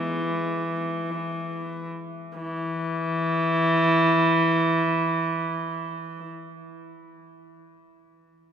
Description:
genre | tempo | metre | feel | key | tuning
classical, baroque-style suite movement for unaccompanied viola | free time | none | none | unclear | A4 = 441 Hz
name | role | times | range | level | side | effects
warm viola | solo | 0.0-6.3 s | E3 | -23 LUFS | equal | none
room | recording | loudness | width
wet cathedral reverb, RT60 5.3 s | none | -22 LUFS | side -8 dB against mid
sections
0.0-2.4 A section; 2.4-7.9 B section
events
slowing down 0.0-2.4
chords
none

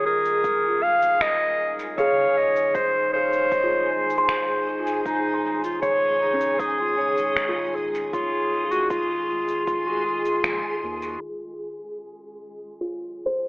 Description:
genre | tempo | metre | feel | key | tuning
ambient dub | 78 BPM | 4/4 | straight | unclear | A4 = 440 Hz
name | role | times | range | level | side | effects
clear clarinet | melody | 0.0-10.8 s | Eb4 to F5 | -21 LUFS | equal | vintage 12-bit sampler grit, analog delay
warbly tape-like pad | sustained chords | 0.0-13.5 s | Eb3 to Eb5 | -34 LUFS | left 1 dB | chorus, built-in reverb
kalimba | arpeggios | 0.0-13.5 s | Db4 to C6 | -30 LUFS | equal | low-pass filter, analog delay
soft dub sub bass | bass | 0.0-11.2 s | Eb1 to Eb2 | -47 LUFS | equal | none
backwards swelling texture | texture | 0.0-13.5 s | Ab3 to Ab4 | -32 LUFS | equal | built-in reverb
electronic shaker and finger snaps | drums | 0.3-11.2 s | none | -29 LUFS | equal | low-pass filter on perc, low-pass filter on snare, low-pass filter on room, dub echo
electronic kick drum | drums | 0.4-10.6 s | none | -38 LUFS | equal | none
room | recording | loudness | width
wet echo chamber reverb, RT60 2.2 s | echo-heavy mix, low-pass filter, telephone sound | -20 LUFS | side -26 dB against mid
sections
0.0-11.2 A section; 11.2-13.5 B section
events
filter sweep on ambient pad 11.2-13.5; filter sweep on kalimba 11.2-13.5; filter sweep 11.2-13.5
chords
0.0 Db/Eb; 11.2 Ebm7

